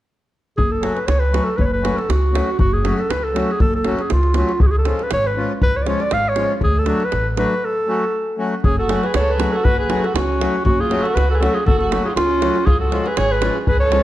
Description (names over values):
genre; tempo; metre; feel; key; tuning
balkan folk, Balkan wedding band; 119 BPM; 2/4; swing 54% on 16ths; F# harmonic minor; A4 = 439 Hz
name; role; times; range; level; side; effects
warm clarinet; melody; 0.6-14.0 s; E#4 to E#5; -20 LUFS; equal; none
upright bass; bass; 0.6-14.0 s; F#1 to D2; -21 LUFS; equal; none
davul; percussion; 0.6-14.0 s; none; -22 LUFS; equal; none
accordion; accompaniment; 0.8-14.0 s; E#3 to F#4; -24 LUFS; left 2 dB; none
dark violin; second line; 8.7-14.0 s; C#4 to A4; -25 LUFS; right 3 dB; none
room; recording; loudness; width
moderate recital hall reverb, RT60 1.4 s; dark, warm production; -16 LUFS; side -14 dB against mid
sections
0.6-8.6 A section; 8.6-14.0 A section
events
break 7.6-8.6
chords
0.6 F#m; 4.6 C#; 6.6 D; 7.6 F#m; 12.7 C#